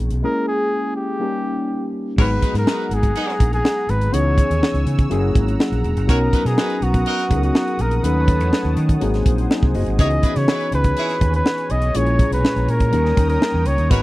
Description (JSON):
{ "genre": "polished 1980s jazz-funk pop", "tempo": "123 BPM", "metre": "4/4", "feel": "straight", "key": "G# minor", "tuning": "A4 = 440 Hz", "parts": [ { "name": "barky tine electric piano", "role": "accompaniment", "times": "0.0-14.0 s", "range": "A#2 to A#5", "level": "-23 LUFS", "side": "left 2 dB", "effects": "overdrive, analog chorus" }, { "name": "overdriven fingered electric bass", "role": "bass", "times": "0.0-14.0 s", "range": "E1 to D#3", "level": "-20 LUFS", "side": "equal", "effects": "none" }, { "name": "tight funk drum kit", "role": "drums", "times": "0.1-14.0 s", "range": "crash cymbal, hi-hat, kick drum, snare drum", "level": "-18 LUFS", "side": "equal", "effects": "none" }, { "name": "warm flugelhorn", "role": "melody", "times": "0.2-14.0 s", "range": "F#4 to D#5", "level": "-23 LUFS", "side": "equal", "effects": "none" }, { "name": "clear horn section", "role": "second line", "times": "2.2-14.0 s", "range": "B3 to C#5", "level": "-27 LUFS", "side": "equal", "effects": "none" }, { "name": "warm analog pad", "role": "sustained chords", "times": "2.2-14.0 s", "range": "B3 to E6", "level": "-32 LUFS", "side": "equal", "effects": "chorus" } ], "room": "little or no reverb", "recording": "dry, close 1970s-style studio recording", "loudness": "-16 LUFS", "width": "side -18 dB against mid", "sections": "0.0-2.2 A section; 2.2-14.0 B section", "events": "none", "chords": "0.2 A#m7b5; 1.2 D#7; 2.2 G#m9; 4.1 C#m7; 5.1 F#7; 6.1 Bmaj7; 8.0 D#m7b5; 9.0 G#7; 10.0 C#m7; 12.0 A#m7b5; 12.9 D#7" }